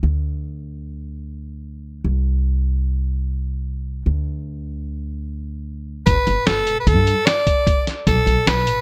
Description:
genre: progressive instrumental, band music in an uneven meter.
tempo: 149 BPM.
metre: 5/4.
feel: straight.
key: unclear.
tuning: A4 = 440 Hz.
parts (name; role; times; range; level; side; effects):
upright bass; bass; 0.0-8.7 s; E1 to G2; -24 LUFS; equal; none.
raspy soprano saxophone; melody; 6.1-8.8 s; A4 to D5; -21 LUFS; equal; tape echo.
lo-fi sampler-style drum kit; drums; 6.1-8.8 s; hi-hat, kick drum, snare drum; -21 LUFS; equal; none.
room: little or no reverb.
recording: none.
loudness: -20 LUFS.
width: mono.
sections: 0.0-6.1 A section; 6.1-8.8 B section.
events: none.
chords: 0.0 N.C.; 6.1 Gadd9; 8.1 B5.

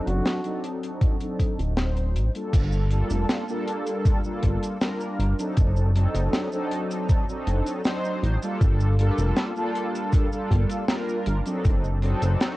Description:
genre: vaporwave.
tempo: 79 BPM.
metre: 4/4.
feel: straight.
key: G minor.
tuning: A4 = 440 Hz.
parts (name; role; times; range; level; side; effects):
mellow synth brass; accompaniment; 0.0-12.6 s; F#3 to C5; -28 LUFS; equal; ensemble chorus, tape echo.
breathy flugelhorn; melody; 0.1-0.6 s; F#4; -36 LUFS; equal; tape echo.
chorused synth bass; bass; 0.1-12.4 s; D1 to A1; -22 LUFS; equal; tube saturation.
deep reggae drum kit; drums; 0.1-12.6 s; cabasa, crash cymbal, hi-hat, snare drum; -28 LUFS; equal; vintage 12-bit sampler grit, small room ambience.
electronic kick drum; drums; 1.0-11.8 s; none; -22 LUFS; equal; vintage 12-bit sampler grit, small room ambience.
room: little or no reverb.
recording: dry, gritty hardware recording, cassette tape.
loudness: -22 LUFS.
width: side -18 dB against mid.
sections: 0.0-2.5 A section; 2.5-12.6 B section.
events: kick drops out 1.8-2.5.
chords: 0.0 D7b9/F#; 2.5 Gm9; 5.6 D7b9/F#; 8.6 Gm9; 11.6 D7b9/F#.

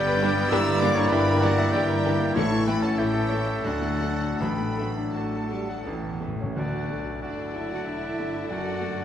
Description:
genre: classical.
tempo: 75-101 BPM.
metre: 3/4.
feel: rubato.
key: D major.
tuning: A4 = 441 Hz.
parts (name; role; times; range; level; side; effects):
clear grand piano; melody; 0.0-9.0 s; A1 to G5; -28 LUFS; left 1 dB; none.
clear symphonic violin section; melody; 0.0-9.0 s; F#5 to E6; -38 LUFS; left 3 dB; none.
hollow concert flute; second line; 0.0-9.0 s; D5 to B5; -37 LUFS; left 2 dB; none.
warm oboe; second line; 0.0-9.0 s; F#4 to F#5; -34 LUFS; equal; none.
clear trombone section; sustained chords; 0.0-6.2 s; G2 to G3; -34 LUFS; right 3 dB; none.
dark French horn section; sustained chords; 0.0-9.0 s; F#3 to G4; -32 LUFS; left 3 dB; none.
warm trumpet; stabs; 0.0-6.2 s; A4 to D5; -31 LUFS; equal; none.
warm symphonic cello section; bass; 0.0-9.0 s; G2 to F#4; -33 LUFS; right 2 dB; none.
warm symphonic double bass section; bass; 0.0-9.0 s; E1 to D2; -32 LUFS; right 3 dB; none.
dark symphonic violin section; second line; 0.2-9.0 s; C#4 to F#5; -37 LUFS; left 3 dB; none.
warm studio viola section; accompaniment; 0.2-9.0 s; E3 to A4; -36 LUFS; right 1 dB; none.
timpani; percussion; 2.4-7.5 s; A2 to D3; -35 LUFS; left 2 dB; none.
bright clarinet; second line; 6.6-9.0 s; D5; -35 LUFS; left 2 dB; none.
room: wet recital hall reverb, RT60 1.7 s.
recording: none.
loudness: -23 LUFS.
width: side -10 dB against mid.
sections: 0.0-6.6 A section; 6.6-9.0 B section.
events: timpani fill 5.9-6.6.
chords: 0.0 G; 0.5 Em7b5/G; 2.4 A; 3.6 D; 4.4 D/A; 5.9 A; 6.6 D; 8.5 D/F#.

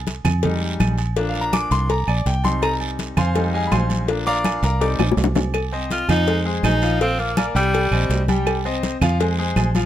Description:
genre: latin, salsa.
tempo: 164 BPM.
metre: 4/4.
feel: straight.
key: unclear.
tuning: A4 = 438 Hz.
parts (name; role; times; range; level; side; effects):
fingered electric bass; bass; 0.0-9.9 s; Bb1 to F2; -21 LUFS; right 1 dB; none.
congas; percussion; 0.1-9.9 s; none; -25 LUFS; left 1 dB; none.
cowbell and bongos; percussion; 0.1-9.8 s; none; -25 LUFS; left 5 dB; none.
guiro; percussion; 0.1-9.9 s; none; -35 LUFS; right 6 dB; none.
agogo bells and timbales; percussion; 0.2-9.9 s; none; -30 LUFS; right 8 dB; none.
claves; percussion; 0.3-9.7 s; none; -32 LUFS; right 6 dB; none.
bright concert grand piano; accompaniment; 0.4-9.9 s; F3 to D6; -24 LUFS; left 2 dB; none.
bright tenor saxophone; melody; 5.9-8.2 s; G3 to F4; -22 LUFS; equal; none.
room: little or no reverb.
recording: close, detailed microphones.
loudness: -18 LUFS.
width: side -12 dB against mid.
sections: 0.0-5.5 A section; 5.5-9.9 B section.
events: grand piano solo 0.0-5.5; drum fill 5.0-5.5.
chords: 0.4 Fm7; 1.2 Bb; 1.9 Fm7; 4.1 Bb; 4.8 Cm; 6.3 Fm7; 7.0 Bb; 7.7 Cm; 9.2 Fm.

